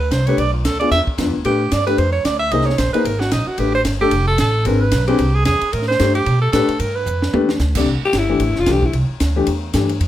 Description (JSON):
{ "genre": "jazz, small-group swing and bop", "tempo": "224 BPM", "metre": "4/4", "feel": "swing 58% on 8ths", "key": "C major", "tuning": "A4 = 440 Hz", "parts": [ { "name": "bright alto saxophone", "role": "second line", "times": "0.0-7.3 s", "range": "Eb4 to E5", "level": "-19 LUFS", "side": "right 3 dB", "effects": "none" }, { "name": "upright bass", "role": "bass", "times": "0.0-10.1 s", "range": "E1 to B2", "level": "-19 LUFS", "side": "equal", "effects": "none" }, { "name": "compact cocktail drum kit", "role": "drums", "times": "0.1-10.1 s", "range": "crash cymbal, hi-hat, kick drum, ride cymbal, snare drum, toms", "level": "-24 LUFS", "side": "right 1 dB", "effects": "none" }, { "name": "warm grand piano", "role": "accompaniment", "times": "0.3-9.9 s", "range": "C3 to D5", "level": "-20 LUFS", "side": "left 4 dB", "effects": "none" }, { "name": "growling alto saxophone", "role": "melody", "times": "8.1-9.0 s", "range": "E4 to G4", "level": "-18 LUFS", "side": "left 3 dB", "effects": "none" } ], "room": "light reverb", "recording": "none", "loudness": "-15 LUFS", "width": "side -12 dB against mid", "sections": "0.0-7.9 A section; 7.9-10.1 A section", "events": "alto saxophone solo 0.0-7.9, 7.9-10.1; drum fill 7.1-7.6", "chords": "0.4 Bdim; 0.9 E5; 1.5 A9sus4; 2.5 Ab9; 3.6 Fadd9; 4.7 E7b13; 5.7 Am9; 6.8 G13; 7.9 C6; 8.9 C69", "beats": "0.12 | 0.39 0.65 0.92 1.19 | 1.46 1.72 1.99 2.26 | 2.52 2.79 3.06 3.33 | 3.59 3.86 4.13 4.39 | 4.66 4.93 5.19 5.46 | 5.73 6.00 6.26 6.53 | 6.80 7.07 7.33 7.60 | 7.87 8.14 8.40 8.67 | 8.94 9.21 9.48 9.74 | 10.01" }